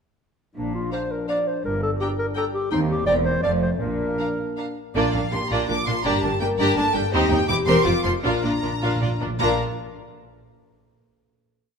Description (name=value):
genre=quick classical-period movement for symphony orchestra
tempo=153-171 BPM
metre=3/4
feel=rubato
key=Bb major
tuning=A4 = 440 Hz
part: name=mellow clarinet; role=second line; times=0.6-4.7 s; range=D4 to D5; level=-24 LUFS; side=equal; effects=none
part: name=warm French horn section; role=sustained chords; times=0.6-9.6 s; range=F3 to Bb4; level=-29 LUFS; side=left 3 dB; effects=none
part: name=rich chamber double bass section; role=bass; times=0.6-9.6 s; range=E1 to Eb2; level=-29 LUFS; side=right 2 dB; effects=none
part: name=warm studio cello section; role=bass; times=0.6-9.6 s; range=Eb2 to Bb2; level=-29 LUFS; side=right 2 dB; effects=none
part: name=warm studio violin section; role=melody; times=0.9-9.6 s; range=D5 to D6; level=-28 LUFS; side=equal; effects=none
part: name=rich chamber violin section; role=second line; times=0.9-9.6 s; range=Bb3 to G5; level=-27 LUFS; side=left 4 dB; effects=none
part: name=rich studio viola section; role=accompaniment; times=0.9-9.6 s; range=Bb3 to G4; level=-26 LUFS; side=right 2 dB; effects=none
part: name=timpani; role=percussion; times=5.0-5.5, 8.2-9.6 s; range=Bb2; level=-30 LUFS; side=equal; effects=none
room=moderate recital hall reverb, RT60 1.8 s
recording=minimal, uncompressed stereo recording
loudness=-20 LUFS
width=side -6 dB against mid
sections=0.6-5.0 A section; 5.0-9.4 A section; 9.4-10.5 final chord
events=timpani fill 8.2-9.4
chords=0.6 Bb; 1.7 Gm; 2.7 Cm/Eb; 3.1 C7/E; 3.4 F; 3.8 Bb; 6.0 Gm; 7.1 Cm; 7.5 C7; 7.9 F; 8.2 Bb